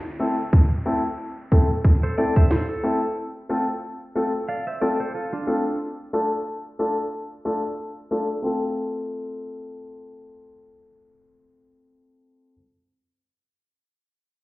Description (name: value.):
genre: dancehall.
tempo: 91 BPM.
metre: 4/4.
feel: swing 56% on 16ths.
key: F major.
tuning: A4 = 439 Hz.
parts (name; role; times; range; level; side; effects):
downlifter; sound effects; 0.0-3.2 s; none; -44 LUFS; equal; none.
dark grand piano; accompaniment; 0.2-12.5 s; A3 to A4; -25 LUFS; left 1 dB; low-pass filter.
island pop drum kit; drums; 0.5-2.7 s; kick drum, snare drum; -16 LUFS; equal; overdrive.
clean electric guitar; arpeggios; 2.0-5.8 s; D4 to F5; -28 LUFS; right 2 dB; low-pass filter.
room: moderate plate reverb, RT60 1.7 s, digital ambience.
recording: heard muffled through a wall, stone room reverb, EQ.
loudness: -21 LUFS.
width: side -19 dB against mid.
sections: 0.0-8.4 A section; 8.4-11.1 B section.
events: filter sweep 0.0-8.4.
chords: 0.0 Am; 3.2 F; 5.8 Dm; 8.4 F.